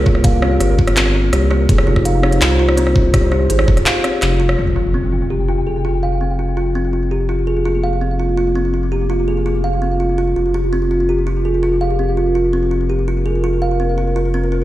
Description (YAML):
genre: half-time drum and bass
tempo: 166 BPM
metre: 4/4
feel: half-time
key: F minor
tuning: A4 = 444 Hz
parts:
  - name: dark analog pad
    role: sustained chords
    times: 0.0-14.6 s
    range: F4 to C5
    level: -23 LUFS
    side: right 1 dB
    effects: chorus, phaser, vintage 12-bit sampler grit, sidechain pumping
  - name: kalimba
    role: arpeggios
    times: 0.0-14.6 s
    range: C4 to F5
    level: -19 LUFS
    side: equal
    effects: low-pass filter, ping-pong delay
  - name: saturated sub bass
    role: bass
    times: 0.0-14.6 s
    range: F1 to C2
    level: -18 LUFS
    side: equal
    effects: tube saturation
  - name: pulsing gated texture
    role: texture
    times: 0.0-14.6 s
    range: Bb3 to G5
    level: -28 LUFS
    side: left 1 dB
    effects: chorus, built-in reverb
  - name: electronic kick drum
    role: drums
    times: 0.1-3.8 s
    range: none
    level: -14 LUFS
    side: equal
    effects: none
  - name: industrial drum kit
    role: drums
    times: 0.1-4.6 s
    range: handclaps, hi-hat, rim click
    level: -20 LUFS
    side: equal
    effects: low-pass filter on snare, low-pass filter on hats, low-pass filter on room
  - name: impact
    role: sound effects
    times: 4.6-6.0 s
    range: none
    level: -24 LUFS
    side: equal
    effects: none
room: light reverb, digital ambience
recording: played on a big sound system in a bare room, stone room reverb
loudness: -14 LUFS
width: side -14 dB against mid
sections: 0.0-4.6 A section; 4.6-14.6 B section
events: band accent 4.5; impact 4.6-6.0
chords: 0.0 Fmadd9; 4.6 Fsus2